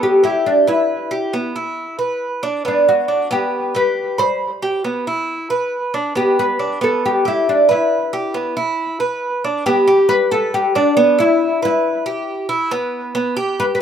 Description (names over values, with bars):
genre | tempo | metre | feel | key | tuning
latin | 137 BPM | 4/4 | straight | G major | A4 = 438 Hz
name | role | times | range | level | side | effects
oud | melody | 0.0-13.8 s | D4 to C5 | -15 LUFS | left 1 dB | slapback echo
Cuban tres | arpeggios | 0.0-13.8 s | B3 to B5 | -20 LUFS | right 3 dB | slapback echo
room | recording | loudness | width
little or no reverb | recorded outdoors, with no room sound | -15 LUFS | side -8 dB against mid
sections
0.0-9.7 A section; 9.7-13.8 B section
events
none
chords
0.0 G; 0.9 Bmadd11; 2.6 G; 4.4 Cmaj7; 6.2 G; 7.9 Bmadd11; 11.4 Em; 13.2 G